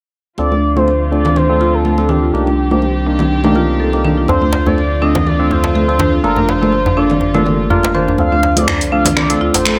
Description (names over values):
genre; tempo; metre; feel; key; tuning
afro house; 123 BPM; 4/4; swing 55% on 16ths; D phrygian; A4 = 435 Hz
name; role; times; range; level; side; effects
expressive synth lead; melody; 0.4-9.8 s; G4 to F5; -21 LUFS; equal; analog chorus, cassette tape, delay
dark studio string section; sustained chords; 0.4-9.8 s; D3 to G4; -26 LUFS; equal; low-pass filter
barky tine electric piano; stabs; 0.4-9.8 s; Bb3 to C5; -22 LUFS; equal; overdrive, low-pass filter, delay
warm sub bass; bass; 0.4-9.8 s; G1 to D2; -21 LUFS; equal; none
congas; percussion; 0.4-9.8 s; none; -22 LUFS; equal; none
marimba with medium mallets; arpeggios; 0.5-9.8 s; A3 to C5; -20 LUFS; equal; low-pass filter, delay
djembe; percussion; 4.3-9.6 s; none; -22 LUFS; equal; none
deep house drum kit; drums; 8.6-9.8 s; finger snaps, hi-hat, toms; -19 LUFS; equal; overdrive, high-pass filter on hats, high-pass filter on toms, high-pass filter on snare, high-pass filter on room
room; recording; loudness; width
light reverb; none; -14 LUFS; mono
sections
0.4-8.2 A section; 8.2-9.8 B section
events
filter sweep on marimba 0.4-8.2; build-up 8.2-9.8; filter sweep 8.2-9.8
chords
0.4 Dm7; 2.3 Cm7; 4.3 Dm7; 6.2 Gm7; 8.2 Dm7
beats
| 0.39 0.87 1.36 1.85 | 2.34 2.83 3.31 3.80 | 4.29 4.78 5.26 5.75 | 6.24 6.73 7.22 7.70 | 8.19 8.68 9.17 9.65